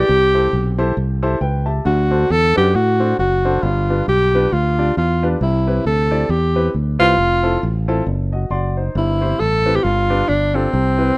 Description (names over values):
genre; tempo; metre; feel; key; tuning
uptempo gospel; 136 BPM; 4/4; swing 59% on 8ths; C major; A4 = 440 Hz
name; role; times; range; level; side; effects
breathy tenor saxophone; melody; 0.0-11.2 s; C4 to A4; -16 LUFS; equal; none
clear grand piano; accompaniment; 0.0-11.2 s; G2 to C6; -22 LUFS; left 1 dB; none
fingered electric bass; bass; 0.0-11.1 s; F1 to A2; -18 LUFS; equal; none
room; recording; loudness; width
small room ambience; rough home demo mix; -14 LUFS; side -24 dB against mid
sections
0.0-11.2 A section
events
grand piano fill 1.0-1.9, 8.3-8.9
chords
0.1 Am7; 1.9 D7; 3.6 G7; 5.4 Cmaj7; 7.2 Fmaj7; 8.1 D7b9/F#; 8.9 C/G; 9.8 G7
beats
| 0.09 0.53 0.98 1.42 | 1.86 2.31 2.75 3.19 | 3.63 4.08 4.52 4.96 | 5.41 5.85 6.29 6.74 | 7.18 7.62 8.06 8.50 | 8.95 9.39 9.83 10.27 | 10.71 11.15